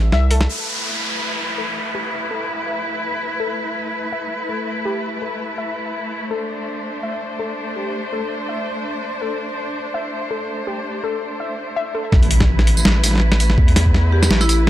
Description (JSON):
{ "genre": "half-time drum and bass", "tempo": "165 BPM", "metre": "4/4", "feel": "swing 55% on 16ths, half-time", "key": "A minor", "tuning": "A4 = 442 Hz", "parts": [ { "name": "saturated sub bass", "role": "bass", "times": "0.0-0.5, 12.1-14.7 s", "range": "A1 to E2", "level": "-16 LUFS", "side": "equal", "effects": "none" }, { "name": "warbly dusty pluck", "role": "arpeggios", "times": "0.1-12.1 s", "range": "G4 to E5", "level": "-28 LUFS", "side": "left 3 dB", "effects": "chorus, tape echo" }, { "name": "boom bap sampler-style drum kit", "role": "drums", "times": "0.1-0.5, 12.1-14.7 s", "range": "hi-hat, snare drum, tambourine", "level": "-18 LUFS", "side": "equal", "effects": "none" }, { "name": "warm chamber cello section", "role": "sustained chords", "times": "0.5-14.7 s", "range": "A3 to C5", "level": "-25 LUFS", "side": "equal", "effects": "sidechain pumping" }, { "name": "downlifter and impact", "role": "sound effects", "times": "0.5-3.4, 12.2-13.6 s", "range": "none", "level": "-25 LUFS", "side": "equal", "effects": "none" }, { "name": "electronic kick drum", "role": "drums", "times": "12.1-13.9 s", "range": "none", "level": "-15 LUFS", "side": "equal", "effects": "none" }, { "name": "marimba with medium hard mallets", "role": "melody", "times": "14.1-14.6 s", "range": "E4 to G4", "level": "-21 LUFS", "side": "equal", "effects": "none" } ], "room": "little or no reverb", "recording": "dry, gritty hardware recording", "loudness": "-18 LUFS", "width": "side -13 dB against mid", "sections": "0.5-12.1 A section; 12.1-14.7 B section", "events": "drop 12.1-14.7; impact 12.1-13.6", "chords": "0.5 Amadd9; 12.1 Asus2", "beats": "0.13 | 0.49 0.85 1.22 1.58 | 1.95 2.31 2.67 3.04 | 3.40 3.76 4.13 4.49 | 4.85 5.22 5.58 5.95 | 6.31 6.67 7.04 7.40 | 7.76 8.13 8.49 8.85 | 9.22 9.58 9.95 10.31 | 10.67 11.04 11.40 11.76 | 12.13 12.49 12.85 13.22 | 13.58 13.95 14.31 14.67" }